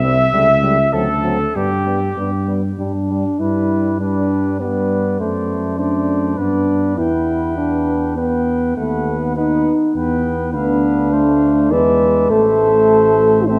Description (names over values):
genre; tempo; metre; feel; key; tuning
classical, brass quintet; 101 BPM; 3/4; rubato; G major, A minor from 10.5 s; A4 = 437 Hz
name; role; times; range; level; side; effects
clear cornet; melody; 0.0-13.6 s; G4 to G5; -28 LUFS; equal; none
warm trumpet; second line; 0.0-13.6 s; G4 to E5; -26 LUFS; equal; none
clear trombone; accompaniment; 0.0-13.6 s; F#3 to B3; -26 LUFS; equal; none
warm French horn; accompaniment; 0.0-13.6 s; A3 to B4; -19 LUFS; equal; none
mellow tuba; bass; 0.0-13.6 s; A1 to G2; -23 LUFS; equal; none
room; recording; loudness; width
moderate concert hall reverb, RT60 2.1 s; dark, warm production; -17 LUFS; mono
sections
0.0-3.4 A section; 3.4-13.6 B section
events
none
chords
0.3 A7/C#; 0.9 D7; 1.6 G; 5.2 D7/F#; 6.4 G; 7.0 Em; 8.8 B/D#; 10.0 Em; 10.5 Bdim/D; 11.7 E7; 12.3 Am